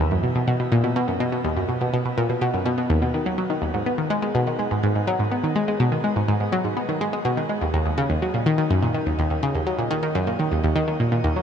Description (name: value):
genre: ambient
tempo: 124 BPM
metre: 4/4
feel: straight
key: unclear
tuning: A4 = 442 Hz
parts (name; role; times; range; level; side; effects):
- analog pluck; solo; 0.0-11.4 s; D#2 to B3; -20 LUFS; equal; chorus, phaser, cassette tape, tape echo
room: moderate shimmer reverb, RT60 8.8 s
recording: none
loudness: -20 LUFS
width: side -8 dB against mid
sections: 0.0-11.4 A section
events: none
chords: none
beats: 0.36 0.84 1.32 | 1.81 2.29 2.78 3.26 | 3.75 4.23 4.71 5.20 | 5.68 6.16 6.65 7.13 | 7.62 8.10 8.58 9.07 | 9.55 10.04 10.52 11.00